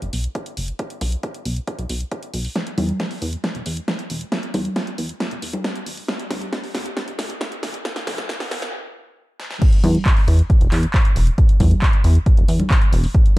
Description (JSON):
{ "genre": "uplifting trance", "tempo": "136 BPM", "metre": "4/4", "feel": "straight", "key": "unclear", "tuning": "A4 = 439 Hz", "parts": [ { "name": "plucky analog bass", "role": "bass", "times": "0.0-13.1 s", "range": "D1 to E2", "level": "-19 LUFS", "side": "equal", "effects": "sidechain pumping" }, { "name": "big-room dance drum kit", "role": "drums", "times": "0.0-13.3 s", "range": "congas, crash cymbal, handclaps, hi-hat, snare drum", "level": "-25 LUFS", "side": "equal", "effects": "none" }, { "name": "electronic kick drum", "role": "drums", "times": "0.4-13.2 s", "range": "none", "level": "-17 LUFS", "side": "equal", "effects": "high-pass filter on kick, high-pass filter on room" } ], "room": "digital ambience", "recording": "dark, warm production, high-pass filter", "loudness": "-18 LUFS", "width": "side -19 dB against mid", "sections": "0.0-9.6 A section; 9.6-13.4 B section", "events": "build-up 0.0-9.6; filter sweep 0.0-9.6; drum fill 2.6-8.7, 9.4; stop 8.7-9.6; drop 9.6-13.4", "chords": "none" }